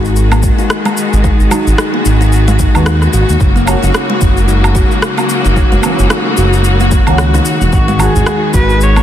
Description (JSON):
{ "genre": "organic downtempo", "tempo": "111 BPM", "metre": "4/4", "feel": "swing 58% on 16ths", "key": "unclear", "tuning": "A4 = 440 Hz", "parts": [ { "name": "deep mellow chord stab", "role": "accompaniment", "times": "0.0-9.0 s", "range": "D#3 to F#4", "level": "-21 LUFS", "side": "right 2 dB", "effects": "ensemble chorus, sidechain pumping, ping-pong delay" }, { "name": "rich studio string section", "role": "sustained chords", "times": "0.0-9.0 s", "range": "C#3 to F#4", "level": "-17 LUFS", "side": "left 2 dB", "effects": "sidechain pumping" }, { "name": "kalimba", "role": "arpeggios", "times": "0.0-9.0 s", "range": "D#3 to F#4", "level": "-17 LUFS", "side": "left 2 dB", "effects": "ping-pong delay" }, { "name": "smooth gliding synth bass", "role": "bass", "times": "0.0-9.0 s", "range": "E1 to D#2", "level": "-12 LUFS", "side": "equal", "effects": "sidechain pumping" }, { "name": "electronic shaker, woodblock and rim click", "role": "drums", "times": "0.1-9.0 s", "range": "none", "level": "-19 LUFS", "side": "right 1 dB", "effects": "soft clipping on snare" }, { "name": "electronic kick drum", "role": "drums", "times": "0.4-8.7 s", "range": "none", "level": "-13 LUFS", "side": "equal", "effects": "none" }, { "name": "warm kamancheh", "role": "melody", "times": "7.7-9.0 s", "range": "F#4 to C#5", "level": "-15 LUFS", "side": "left 1 dB", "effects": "ping-pong delay" }, { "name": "djembe", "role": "percussion", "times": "8.0-8.8 s", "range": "none", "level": "-23 LUFS", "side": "right 3 dB", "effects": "none" } ], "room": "light reverb, studio ambience", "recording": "dense, heavily limited modern master", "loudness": "-8 LUFS", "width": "side -11 dB against mid", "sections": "0.0-9.0 A section", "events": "none", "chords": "0.0 G#7(no3); 3.4 F#; 7.7 G#m7" }